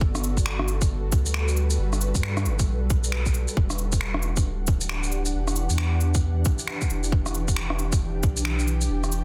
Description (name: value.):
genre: future garage.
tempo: 135 BPM.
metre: 4/4.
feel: swing 62% on 16ths.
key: E minor.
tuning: A4 = 439 Hz.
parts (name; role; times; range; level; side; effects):
ethereal airy pad; sustained chords; 0.0-9.2 s; E3 to G5; -34 LUFS; equal; ensemble chorus, built-in reverb, sidechain pumping.
warm sub bass; bass; 0.0-9.2 s; D1 to G2; -28 LUFS; equal; sidechain pumping.
electronic kick drum; drums; 0.0-8.3 s; none; -26 LUFS; equal; none.
electronic rim click, shaker, cabasa and finger snaps; drums; 0.1-9.2 s; none; -32 LUFS; equal; soft clipping on snare.
room: light reverb.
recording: dense, heavily limited modern master.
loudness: -25 LUFS.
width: mono.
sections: 0.0-9.2 A section.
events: none.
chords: 0.0 Gmaj9; 3.6 Em9.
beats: | 0.01 0.46 0.90 1.34 | 1.79 2.23 2.68 3.12 | 3.57 4.01 4.46 4.90 | 5.34 5.79 6.23 6.68 | 7.12 7.57 8.01 8.46 | 8.90.